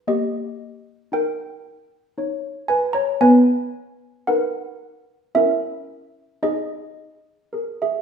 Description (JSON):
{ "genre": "classical, tune for handbells", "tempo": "56 BPM", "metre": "3/4", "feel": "straight", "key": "unclear", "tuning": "A4 = 440 Hz", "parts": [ { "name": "malleted handbells", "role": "solo", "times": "0.0-8.0 s", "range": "A#3 to A#5", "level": "-18 LUFS", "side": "equal", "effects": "none" } ], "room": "wet stone room reverb, RT60 1.2 s", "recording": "minimal, uncompressed stereo recording", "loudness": "-18 LUFS", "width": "side -7 dB against mid", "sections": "0.0-8.0 A section", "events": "none", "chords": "0.1 D#7/A#; 3.2 G#m/B; 5.3 A#dim/C#; 6.4 D#sus4" }